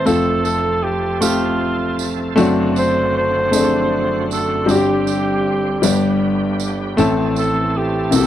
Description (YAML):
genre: slow gospel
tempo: 52 BPM (dotted quarters)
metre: 6/8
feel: straight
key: unclear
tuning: A4 = 439 Hz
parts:
  - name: mellow cor anglais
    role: melody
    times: 0.0-8.3 s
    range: F4 to C5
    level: -20 LUFS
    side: right 1 dB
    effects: none
  - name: clear concert grand piano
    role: accompaniment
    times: 0.0-8.3 s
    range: F1 to A4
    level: -17 LUFS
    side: left 2 dB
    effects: none
  - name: bright tonewheel organ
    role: sustained chords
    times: 0.0-8.3 s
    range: F#2 to A4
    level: -24 LUFS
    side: right 4 dB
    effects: slow rotary speaker, overdrive, chorus vibrato
  - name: tambourine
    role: percussion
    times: 0.1-8.3 s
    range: none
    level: -28 LUFS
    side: right 17 dB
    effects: none
room: studio ambience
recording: dry, close 1970s-style studio recording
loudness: -15 LUFS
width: side -11 dB against mid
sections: 0.0-8.3 A section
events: none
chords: 0.1 F; 2.4 D7/F#; 4.7 Gsus4; 5.8 G; 7.0 Am